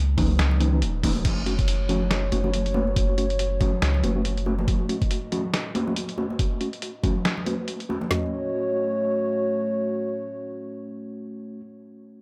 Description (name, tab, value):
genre	deep dubstep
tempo	140 BPM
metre	4/4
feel	swing 58% on 16ths, half-time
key	F# dorian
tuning	A4 = 439 Hz
part	soft dub sub bass	bass	0.0-4.7 s	D#1 to C#2	-27 LUFS	equal	none
part	mellow tine electric piano	stabs	0.2-11.6 s	E3 to F#4	-33 LUFS	equal	low-pass filter, dub echo
part	garage drum kit	drums	0.2-8.2 s	kick drum, snare drum, toms	-26 LUFS	equal	none
part	trip hop sampler-style drum kit	drums	0.2-7.9 s	crash cymbal, hi-hat, snare drum	-32 LUFS	equal	none
part	congas	percussion	0.2-8.1 s	none	-33 LUFS	equal	dub echo
part	dark analog pad	sustained chords	1.2-11.6 s	A3 to D#5	-32 LUFS	equal	chorus
room	moderate plate reverb, RT60 1.2 s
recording	dreamy mix soaked in reverb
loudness	-25 LUFS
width	mono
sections	0.0-1.2 A section; 1.2-8.1 B section; 8.1-11.5 C section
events	drop 0.0-1.2; filter sweep on tine electric piano 1.2-8.1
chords	0.0 C#madd9; 1.2 F#m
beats	0.39 0.82 | 1.25 1.68 2.11 2.54 | 2.96 3.39 3.82 4.25 | 4.68 5.11 5.54 5.96 | 6.39 6.82 7.25 7.68 | 8.11 8.54 8.96 9.39 | 9.82 10.25 10.68 11.11